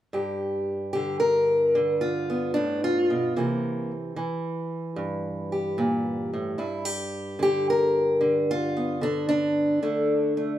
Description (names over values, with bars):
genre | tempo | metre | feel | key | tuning
acoustic country blues, solo or duo | 74 BPM | 4/4 | swing 67% on 8ths | unclear | A4 = 440 Hz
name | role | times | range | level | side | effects
fingerpicked steel-string acoustic guitar | solo | 0.1-10.6 s | G2 to Bb4 | -23 LUFS | equal | none
room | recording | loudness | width
wet large studio reverb, RT60 0.8 s | band playing live in one room | -23 LUFS | side -12 dB against mid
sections
0.1-10.6 A section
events
none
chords
0.1 G; 3.4 C7; 6.6 G; 9.8 D5